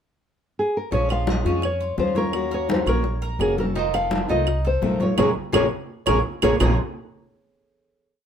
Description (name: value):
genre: latin, Cuban son and guajira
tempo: 169 BPM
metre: 4/4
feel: straight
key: Bb minor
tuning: A4 = 441 Hz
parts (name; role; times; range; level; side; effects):
- nylon-string guitar; melody; 0.6-6.8 s; Ab4 to F5; -24 LUFS; left 1 dB; none
- fingerpicked steel-string acoustic guitar; accompaniment; 0.9-6.7 s; Bb2 to Gb4; -27 LUFS; left 2 dB; none
- Cuban tres; arpeggios; 0.9-6.8 s; Bb3 to Db5; -28 LUFS; right 2 dB; none
- upright bass; bass; 0.9-6.8 s; F1 to F2; -25 LUFS; right 1 dB; none
- bongos; percussion; 0.9-6.7 s; none; -30 LUFS; left 4 dB; none
- congas; percussion; 0.9-6.7 s; none; -27 LUFS; equal; none
- claves; percussion; 1.1-6.7 s; none; -30 LUFS; right 8 dB; none
room: light reverb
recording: minimal, uncompressed stereo recording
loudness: -20 LUFS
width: side -8 dB against mid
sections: 0.0-0.9 pickup bar; 0.9-6.6 A section; 6.6-8.0 final chord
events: drum fill 5.2-6.6; band accent 5.2-6.6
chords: 0.0 N.C.; 0.9 Bbm7; 2.3 Ebm7; 3.8 F7; 5.2 Bbm7; 6.6 Bb7(no3)